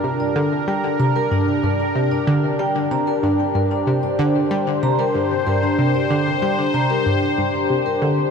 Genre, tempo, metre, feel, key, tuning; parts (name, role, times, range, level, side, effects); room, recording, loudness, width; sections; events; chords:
ambient, sequencer-driven space music; 94 BPM; 4/4; straight; A4 = 440 Hz
sweeping resonant pad; sustained chords; 0.0-8.3 s; D4 to C5; -21 LUFS; equal; chorus
vibraphone with soft mallets; arpeggios; 0.0-8.1 s; D4 to Bb5; -23 LUFS; left 1 dB; auto-pan, ping-pong delay
analog pluck; riff; 0.0-8.2 s; G2 to G3; -21 LUFS; equal; chorus, ping-pong delay
wet huge ambient reverb, RT60 7.8 s; -17 LUFS; side -6 dB against mid
0.0-8.3 A section
0.0 Gm